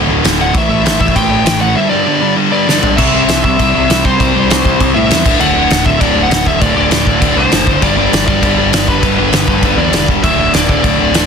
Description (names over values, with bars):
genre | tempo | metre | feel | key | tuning
punk rock | 198 BPM | 4/4 | straight | unclear | A4 = 440 Hz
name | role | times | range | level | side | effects
cranked stack guitar | riff | 0.0-11.3 s | D2 to C4 | -16 LUFS | left 17 dB | overdrive
sludgy distorted guitar | riff | 0.0-11.3 s | D2 to C4 | -16 LUFS | right 16 dB | overdrive
growling picked electric bass | bass | 0.0-11.3 s | D1 to A2 | -18 LUFS | equal | overdrive
loose indie drum kit | drums | 0.2-11.2 s | crash cymbal, kick drum, snare drum, toms | -14 LUFS | equal | none
smooth overdriven lead guitar | melody | 0.4-11.3 s | B4 to G5 | -16 LUFS | left 1 dB | none
room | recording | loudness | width
little or no reverb | dense, heavily limited modern master | -9 LUFS | side -6 dB against mid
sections
0.0-3.0 A section; 3.0-11.3 B section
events
drum fill 2.7-3.0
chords
0.0 D5; 0.5 A5; 1.8 G5; 3.0 C; 5.3 D; 7.8 G; 10.2 D5